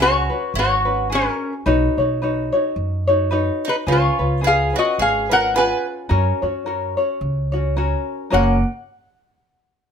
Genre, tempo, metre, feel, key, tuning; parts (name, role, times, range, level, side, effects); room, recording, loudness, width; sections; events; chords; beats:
Hawaiian; 108 BPM; 4/4; swing 56% on 8ths; F# major; A4 = 440 Hz
lap resonator guitar; melody; 0.0-8.6 s; C#4 to G#5; -18 LUFS; left 2 dB; plate reverb
bowl-back mandolin; second line; 0.0-8.6 s; A#3 to B4; -25 LUFS; right 7 dB; slapback echo
tenor ukulele; accompaniment; 0.0-8.6 s; C#4 to C#5; -21 LUFS; left 2 dB
upright bass; bass; 0.0-8.6 s; F#1 to F#2; -22 LUFS; right 1 dB
moderate studio reverb, RT60 0.6 s; -17 LUFS; side -7 dB against mid
0.0-8.3 A section; 8.3-9.9 B section
0.0 C#7sus4; 1.7 Badd9; 3.9 C#7; 6.1 F#
0.00 0.55 1.11 | 1.66 2.22 2.77 3.33 | 3.88 4.44 4.99 5.55 | 6.10 6.66 7.21 7.77 | 8.32